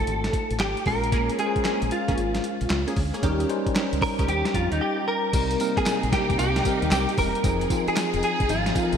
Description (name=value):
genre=R&B, new jack swing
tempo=114 BPM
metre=4/4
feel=swing 66% on 16ths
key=unclear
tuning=A4 = 440 Hz
part: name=direct-recorded clean electric guitar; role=melody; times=0.0-9.0 s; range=Eb4 to Bb4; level=-26 LUFS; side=equal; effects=ensemble chorus
part: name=bell-like tine electric piano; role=accompaniment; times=0.0-9.0 s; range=F3 to C5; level=-28 LUFS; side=left 1 dB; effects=fast stereo tremolo
part: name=deep dub fingered electric bass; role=bass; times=0.0-9.0 s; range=E1 to F2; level=-28 LUFS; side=equal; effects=none
part: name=dusty soul sampler-style drum kit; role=drums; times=0.1-9.0 s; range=crash cymbal, handclaps, hi-hat, kick drum, snare drum, tambourine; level=-27 LUFS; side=equal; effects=gated reverb
part: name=funky polysynth comp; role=stabs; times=1.1-4.3 s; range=Bb3 to Ab4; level=-32 LUFS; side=right 1 dB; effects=chorus, ping-pong delay
part: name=warm symphonic string section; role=sustained chords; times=5.3-9.0 s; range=C3 to Ab4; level=-31 LUFS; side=right 1 dB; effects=none
room=moderate lush hall reverb, RT60 2.8 s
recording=bright 1980s-style digital production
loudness=-21 LUFS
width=side -7 dB against mid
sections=0.0-5.3 A section; 5.3-9.0 B section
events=silent gap 4.8-5.3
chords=0.0 F7; 0.9 Bbm7; 3.2 Eb7; 5.3 Cm7; 7.4 Fm7